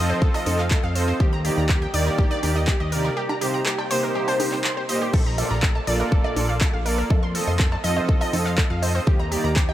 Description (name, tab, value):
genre	progressive house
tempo	122 BPM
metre	4/4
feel	straight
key	Bb major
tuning	A4 = 440 Hz
part	wide unison pluck	arpeggios	0.0-9.7 s	G4 to C6	-27 LUFS	equal	sidechain pumping, tape echo
part	soft supersaw	stabs	0.0-9.5 s	Bb2 to Eb5	-26 LUFS	right 2 dB	sidechain pumping, tape echo
part	fat analog bass	bass	0.0-9.7 s	F1 to F2	-25 LUFS	equal	sidechain pumping
part	electronic kick drum	drums	0.2-9.7 s	none	-20 LUFS	equal	none
part	deep house drum kit	drums	0.3-9.7 s	crash cymbal, handclaps, hi-hat	-29 LUFS	equal	none
part	cowbell, congas and bongos	percussion	0.3-9.7 s	none	-33 LUFS	right 3 dB	sidechain pumping on perc
room	light reverb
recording	none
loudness	-19 LUFS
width	side -13 dB against mid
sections	0.0-9.7 A section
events	none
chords	0.0 F7; 1.2 Ebmaj7; 3.2 Cm7; 5.1 Bbmaj7; 7.1 F7; 9.1 Ebmaj7